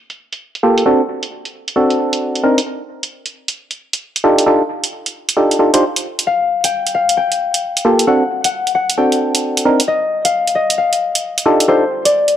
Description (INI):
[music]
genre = UK garage, two-step garage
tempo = 133 BPM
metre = 4/4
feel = swing 64% on 16ths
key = G minor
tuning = A4 = 442 Hz
[part]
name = electronic hi-hat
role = drums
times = 0.1-12.3 s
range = none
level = -18 LUFS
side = right 2 dB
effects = overdrive, low-pass filter on snare, low-pass filter on hats, low-pass filter on perc, low-pass filter on room
[part]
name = percussive organ stab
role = stabs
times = 0.6-11.8 s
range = Bb3 to C5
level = -13 LUFS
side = equal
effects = chorus, analog delay
[part]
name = concert harp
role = melody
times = 6.3-12.4 s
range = C5 to G5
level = -16 LUFS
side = left 4 dB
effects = tape echo
[sound]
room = light reverb, digital ambience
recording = dry, gritty hardware recording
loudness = -13 LUFS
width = side -10 dB against mid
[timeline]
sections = 0.0-12.4 A section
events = none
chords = 0.0 Gm9; 0.9 D7; 2.4 Cm9; 4.2 F13; 6.3 Gm9; 8.1 D7; 9.7 Cm9; 11.5 F13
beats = 0.41 | 0.86 1.31 1.76 2.21 | 2.66 3.11 3.56 4.01 | 4.46 4.92 5.37 5.82 | 6.27 6.72 7.17 7.62 | 8.07 8.53 8.98 9.43 | 9.88 10.33 10.78 11.23 | 11.68 12.13